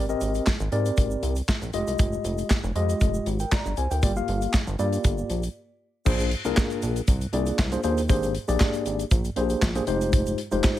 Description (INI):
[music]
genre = early-eighties boogie funk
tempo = 118 BPM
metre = 4/4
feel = straight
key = unclear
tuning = A4 = 441 Hz
[part]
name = mellow tine electric piano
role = accompaniment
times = 0.0-10.8 s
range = Ab3 to Bb5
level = -27 LUFS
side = left 2 dB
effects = medium stereo tremolo
[part]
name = chorused synth bass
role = bass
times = 0.0-10.6 s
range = F1 to Ab2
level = -27 LUFS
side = equal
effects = none
[part]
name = egg shaker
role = percussion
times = 0.1-10.8 s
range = none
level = -43 LUFS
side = right 7 dB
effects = none
[part]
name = modern studio drum kit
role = drums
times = 0.2-10.8 s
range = crash cymbal, handclaps, hi-hat, kick drum, snare drum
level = -25 LUFS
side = equal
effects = none
[sound]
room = small room ambience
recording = none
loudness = -22 LUFS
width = side -13 dB against mid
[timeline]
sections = 0.0-6.1 A section; 6.1-10.8 B section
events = break 5.6-6.1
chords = 0.0 Abmaj9#11; 1.7 Fm9; 4.0 Gm7; 6.1 Bb9; 8.1 Abmaj9#11; 9.9 Fm9